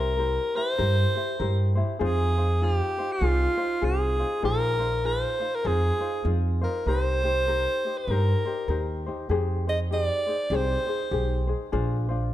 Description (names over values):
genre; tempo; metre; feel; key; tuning
Hawaiian; 99 BPM; 4/4; swing 60% on 8ths; unclear; A4 = 440 Hz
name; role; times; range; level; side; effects
bright alto saxophone; melody; 0.0-11.5 s; F4 to Eb5; -27 LUFS; equal; none
ukulele; accompaniment; 0.0-12.3 s; D4 to C5; -31 LUFS; left 5 dB; none
upright bass; bass; 0.0-12.3 s; Bb1 to G2; -26 LUFS; right 1 dB; none
room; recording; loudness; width
light reverb; dark, warm production; -23 LUFS; side -13 dB against mid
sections
0.0-12.3 A section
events
none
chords
0.0 C7; 2.0 Fm7; 4.4 Bb9sus4; 6.9 Cm7; 9.3 Fm9; 11.7 Bb9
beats
0.19 0.79 1.40 | 2.00 2.61 3.22 3.83 | 4.43 5.04 5.65 6.26 | 6.87 7.47 8.08 8.69 | 9.30 9.91 10.51 11.12 | 11.73 12.33